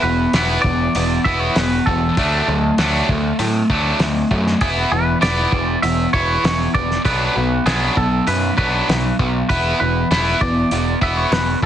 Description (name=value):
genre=indie rock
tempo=98 BPM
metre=4/4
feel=straight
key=unclear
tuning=A4 = 442 Hz
part: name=twangy electric guitar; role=melody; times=0.0-11.7 s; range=G#4 to E5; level=-22 LUFS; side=right 2 dB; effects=wide subtle chorus, tape echo
part: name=high-gain distorted guitar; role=riff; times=0.0-11.7 s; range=E3 to E4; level=-18 LUFS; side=equal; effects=distortion
part: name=growling picked electric bass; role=bass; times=0.0-11.7 s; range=E1 to A2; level=-22 LUFS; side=equal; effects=overdrive
part: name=cloth-damped thuddy drum kit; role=drums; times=0.3-11.7 s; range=hi-hat, kick drum, snare drum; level=-22 LUFS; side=equal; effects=none
room=light reverb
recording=heavily compressed radio sound, nothing above 10.3 kHz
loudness=-15 LUFS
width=side -10 dB against mid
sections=0.0-11.7 A section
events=none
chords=0.0 E5; 2.2 D; 4.6 E5; 7.1 Bm; 9.5 E5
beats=0.34 0.95 1.56 | 2.17 2.79 3.40 4.01 | 4.62 5.23 5.83 6.45 | 7.05 7.67 8.27 8.88 | 9.49 10.10 10.71 11.32